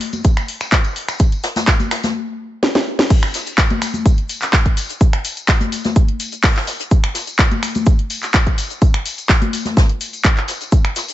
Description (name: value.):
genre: house.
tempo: 126 BPM.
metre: 4/4.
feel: straight.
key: none.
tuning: none.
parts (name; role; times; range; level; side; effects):
house drum kit; drums; 0.0-11.1 s; crash cymbal, finger snaps, handclaps, hi-hat, shaker, snare drum; -19 LUFS; equal; none.
jazz brush drum kit; drums; 0.0-11.1 s; hi-hat, shaker, snare drum; -27 LUFS; equal; sidechain pumping on hats, high-pass filter on hats, high-pass filter on snare, sidechain pumping on perc, high-pass filter on perc, high-pass filter on room.
tambourine and congas; percussion; 0.1-11.1 s; none; -25 LUFS; left 4 dB; none.
electronic kick drum; drums; 0.2-10.8 s; none; -14 LUFS; equal; none.
room: studio ambience.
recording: nothing above 7.9 kHz.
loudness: -14 LUFS.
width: side -14 dB against mid.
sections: 0.0-3.1 A section; 3.1-11.1 B section.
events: drum fill 2.6-3.1; drop 3.1-11.1.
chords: none.